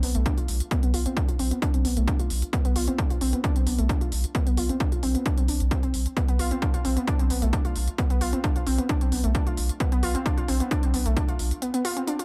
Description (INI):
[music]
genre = driving peak-time techno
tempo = 132 BPM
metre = 4/4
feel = straight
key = B locrian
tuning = A4 = 443 Hz
[part]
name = warbly dusty pluck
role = riff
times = 0.0-12.2 s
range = A3 to E#4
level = -31 LUFS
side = equal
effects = chorus, sidechain pumping, digital delay
[part]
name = saturated sub bass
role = bass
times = 0.0-11.5 s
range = B1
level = -29 LUFS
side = equal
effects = overdrive, sidechain pumping, low-pass filter
[part]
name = electronic hi-hat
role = drums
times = 0.0-12.2 s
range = none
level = -37 LUFS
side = equal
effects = sidechain pumping on hats
[part]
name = electronic kick drum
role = drums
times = 0.3-11.3 s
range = none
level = -28 LUFS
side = equal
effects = none
[sound]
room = little or no reverb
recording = none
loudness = -25 LUFS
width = mono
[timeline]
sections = 0.0-12.2 A section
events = none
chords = none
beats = 0.26 | 0.71 1.17 1.62 2.08 | 2.53 2.98 3.44 3.89 | 4.35 4.80 5.26 5.71 | 6.17 6.62 7.08 7.53 | 7.98 8.44 8.89 9.35 | 9.80 10.26 10.71 11.17 | 11.62 12.07